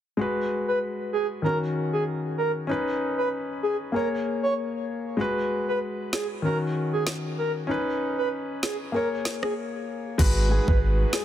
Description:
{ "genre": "dancehall", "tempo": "96 BPM", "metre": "4/4", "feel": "swing 56% on 16ths", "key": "G# minor", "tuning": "A4 = 440 Hz", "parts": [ { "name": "warm grand piano", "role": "accompaniment", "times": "0.2-11.2 s", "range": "D#3 to C#5", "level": "-27 LUFS", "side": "left 2 dB", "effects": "none" }, { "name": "breathy flute-like synth lead", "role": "melody", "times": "0.7-11.2 s", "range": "G#4 to C#5", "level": "-29 LUFS", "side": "right 1 dB", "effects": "chorus, phaser, ping-pong delay" }, { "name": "island pop drum kit", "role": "drums", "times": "6.1-11.2 s", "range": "crash cymbal, kick drum, rim click, snare drum", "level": "-26 LUFS", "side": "equal", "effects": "overdrive" }, { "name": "airy breathy pad", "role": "sustained chords", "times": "10.2-11.2 s", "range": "G#3 to B4", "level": "-33 LUFS", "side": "right 1 dB", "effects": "chorus, sidechain pumping" }, { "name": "warm sub bass", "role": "bass", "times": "10.2-11.0 s", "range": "G#1", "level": "-22 LUFS", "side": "equal", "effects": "none" } ], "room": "light reverb", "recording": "dense, heavily limited modern master", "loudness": "-24 LUFS", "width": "side -11 dB against mid", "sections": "0.2-10.2 A section; 10.2-11.2 B section", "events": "break 9.6-10.2; hi-hats muted 10.2-11.2", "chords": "0.2 G#m7; 1.4 D#m7; 2.7 Badd9; 3.9 A#m7; 5.2 G#m7; 6.4 D#m7; 7.7 Badd9; 8.9 A#m7; 10.2 G#m7" }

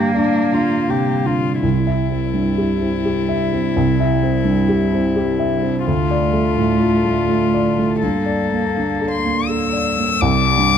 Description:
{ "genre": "neoclassical piano and strings", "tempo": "83 BPM", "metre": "3/4", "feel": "rubato", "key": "unclear", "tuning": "A4 = 440 Hz", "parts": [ { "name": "warm violin", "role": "melody", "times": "0.0-10.8 s", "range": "D4 to E6", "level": "-21 LUFS", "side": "left 7 dB", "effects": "tape echo" }, { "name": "warm cello", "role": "second line", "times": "0.0-10.8 s", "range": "G3 to Bb3", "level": "-22 LUFS", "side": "right 5 dB", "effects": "none" }, { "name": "dark baby grand piano", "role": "accompaniment", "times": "0.0-10.8 s", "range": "C2 to E5", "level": "-18 LUFS", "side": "equal", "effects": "none" } ], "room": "light reverb", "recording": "dark, warm production", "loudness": "-15 LUFS", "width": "side -8 dB against mid", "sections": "0.0-1.6 A section; 1.6-10.2 B section", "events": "none", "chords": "0.0 Gm; 1.6 C; 5.9 Dm; 8.0 Gmadd9; 10.2 C5" }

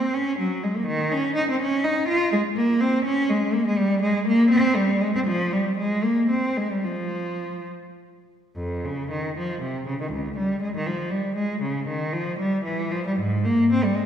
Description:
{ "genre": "classical, baroque-style suite movement for unaccompanied cello", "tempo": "63-84 BPM (dotted quarters)", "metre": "6/8", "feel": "rubato", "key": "F minor", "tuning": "A4 = 441 Hz", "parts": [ { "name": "clear cello", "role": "solo", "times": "0.0-14.1 s", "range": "Db2 to F4", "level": "-21 LUFS", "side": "equal", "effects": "none" } ], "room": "wet concert hall reverb, RT60 1.8 s", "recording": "heard from further back in the room", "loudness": "-21 LUFS", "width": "side -8 dB against mid", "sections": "0.0-8.6 A section; 8.6-14.1 B section", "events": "none", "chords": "none" }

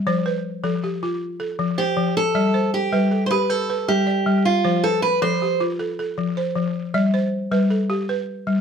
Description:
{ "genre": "west african traditional", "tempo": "105 BPM (dotted quarters)", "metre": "12/8", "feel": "straight", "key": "G mixolydian", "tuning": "A4 = 440 Hz", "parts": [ { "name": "balafon", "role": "arpeggios", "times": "0.0-8.6 s", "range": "F3 to D5", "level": "-21 LUFS", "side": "left 1 dB", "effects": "slapback echo" }, { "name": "picked steel-string acoustic guitar", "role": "melody", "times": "1.8-5.6 s", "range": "F4 to C5", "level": "-20 LUFS", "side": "right 2 dB", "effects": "none" } ], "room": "moderate studio reverb, RT60 0.6 s", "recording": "close, detailed microphones", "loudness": "-19 LUFS", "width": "side -7 dB against mid", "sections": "0.0-8.6 A section", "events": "none", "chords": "0.1 F; 2.4 G; 4.6 F; 6.9 G" }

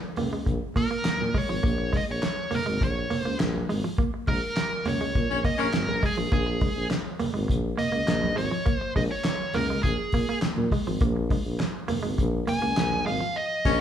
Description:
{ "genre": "funk", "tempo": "102 BPM", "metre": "4/4", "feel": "straight", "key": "Bb minor", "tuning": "A4 = 440 Hz", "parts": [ { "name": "semi-hollow electric guitar", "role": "riff", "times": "0.2-13.3 s", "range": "F3 to Bb3", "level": "-32 LUFS", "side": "right 3 dB", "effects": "none" }, { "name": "mellow tuba", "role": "bass", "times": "0.2-13.8 s", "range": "Ab1 to Bb2", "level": "-30 LUFS", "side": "equal", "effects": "none" }, { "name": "cloth-damped thuddy drum kit", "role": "drums", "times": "0.2-13.8 s", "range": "crash cymbal, handclaps, hi-hat, kick drum, snare drum", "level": "-28 LUFS", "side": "equal", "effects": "none" }, { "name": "congas", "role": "percussion", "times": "0.2-13.1 s", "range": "none", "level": "-35 LUFS", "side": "right 1 dB", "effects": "none" }, { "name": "nasal lead guitar with a parked wah", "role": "melody", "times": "0.8-13.8 s", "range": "Ab4 to Ab5", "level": "-29 LUFS", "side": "right 1 dB", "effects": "overdrive" }, { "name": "clear baritone saxophone", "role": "second line", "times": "5.3-5.7, 13.7-13.8 s", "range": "Db4", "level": "-28 LUFS", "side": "left 6 dB", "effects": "none" } ], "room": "wet large studio reverb, RT60 1.2 s", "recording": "band playing live in one room", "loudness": "-24 LUFS", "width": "side -9 dB against mid", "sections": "0.0-13.8 A section", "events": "lead electric guitar solo 0.0-13.8; band accent 4.0-6.3, 13.4-13.8", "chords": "0.0 Bbm7" }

